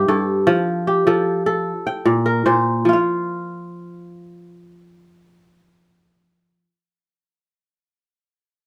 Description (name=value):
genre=west african traditional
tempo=100 BPM (dotted quarters)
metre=12/8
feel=straight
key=F major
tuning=A4 = 439 Hz
part: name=kora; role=solo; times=0.0-6.7 s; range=G2 to G5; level=-19 LUFS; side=equal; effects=none
room=moderate small room reverb, RT60 0.6 s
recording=none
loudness=-19 LUFS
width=mono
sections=0.0-2.9 A section; 2.9-5.2 B section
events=none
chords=0.5 F; 1.7 Gmadd11; 2.9 F5